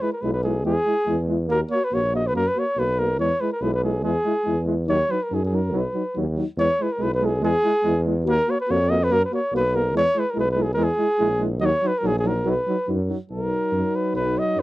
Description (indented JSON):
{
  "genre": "balkan folk, Balkan brass band",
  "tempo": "142 BPM",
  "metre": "2/4",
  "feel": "swing 55% on 16ths",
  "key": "unclear",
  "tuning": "A4 = 445 Hz",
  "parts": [
    { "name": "mellow flugelhorn", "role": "melody", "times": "0.0-14.6 s", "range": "G#4 to D#5", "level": "-22 LUFS", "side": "equal", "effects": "none" },
    { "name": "dark euphonium", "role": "accompaniment", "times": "0.0-14.6 s", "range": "D#4 to F#4", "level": "-28 LUFS", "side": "left 4 dB", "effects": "none" },
    { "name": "mellow trombone", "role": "accompaniment", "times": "0.0-14.6 s", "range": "F#3 to A#3", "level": "-28 LUFS", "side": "right 4 dB", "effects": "none" },
    { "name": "warm tuba", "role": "bass", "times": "0.2-14.6 s", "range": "A#1 to F#2", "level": "-24 LUFS", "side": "equal", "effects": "none" }
  ],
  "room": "little or no reverb",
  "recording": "dry, close 1970s-style studio recording",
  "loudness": "-20 LUFS",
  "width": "side -17 dB against mid",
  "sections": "0.0-6.6 A section; 6.6-13.3 A section; 13.3-14.6 B section",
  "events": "flugelhorn solo 13.3-14.6",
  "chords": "0.0 E; 1.5 D#m; 2.4 F#; 3.2 E; 4.9 D#m; 5.7 B; 6.6 E; 8.3 D#m; 9.1 F#; 9.9 E; 11.6 D#m; 12.5 B"
}